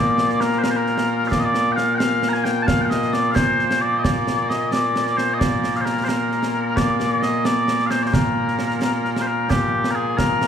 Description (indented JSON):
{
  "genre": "scottish traditional, Scottish pipe music",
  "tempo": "88 BPM (dotted quarters)",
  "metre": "6/8",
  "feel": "straight",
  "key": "Bb major",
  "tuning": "A4 = 443 Hz",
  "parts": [
    { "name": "mellow small bagpipes", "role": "melody", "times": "0.0-10.5 s", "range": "Bb2 to Bb5", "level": "-19 LUFS", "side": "left 1 dB", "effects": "none" },
    { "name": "concert snare drum and concert bass drum", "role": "drums", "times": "0.2-10.5 s", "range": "none", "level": "-23 LUFS", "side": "right 1 dB", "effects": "none" }
  ],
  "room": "wet recital hall reverb, RT60 1.6 s",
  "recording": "recorded in a church or concert hall",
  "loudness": "-18 LUFS",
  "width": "side -8 dB against mid",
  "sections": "0.0-9.5 A section",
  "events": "none",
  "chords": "none",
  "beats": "0.64 | 1.32 2.00 | 2.68 3.36 | 4.05 4.73 | 5.41 6.09 | 6.77 7.46 | 8.14 8.82 | 9.50 10.18"
}